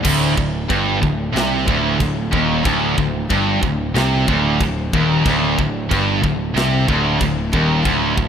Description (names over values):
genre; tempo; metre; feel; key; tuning
heavy metal; 92 BPM; 4/4; straight; unclear; A4 = 440 Hz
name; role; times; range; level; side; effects
high-gain distorted guitar; riff; 0.0-8.3 s; D2 to C3; -22 LUFS; left 9 dB; distortion
scooped high-gain guitar; riff; 0.0-8.3 s; D2 to C3; -20 LUFS; right 9 dB; distortion
thick fuzz guitar; riff; 0.0-8.3 s; D2 to C3; -22 LUFS; left 1 dB; distortion
tight metal drum kit; drums; 0.0-8.3 s; china cymbal, crash cymbal, kick drum, snare drum; -24 LUFS; equal; none
fuzz picked electric bass; bass; 0.1-8.3 s; D1 to C2; -23 LUFS; equal; overdrive
room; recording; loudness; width
light reverb, studio ambience; rough home demo mix; -15 LUFS; side -8 dB against mid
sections
0.0-8.3 A section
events
none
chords
0.0 F7sus2/D (rootless)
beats
| 0.04 0.69 1.35 2.00 | 2.65 3.30 3.95 4.61 | 5.25 5.91 6.56 7.21 | 7.86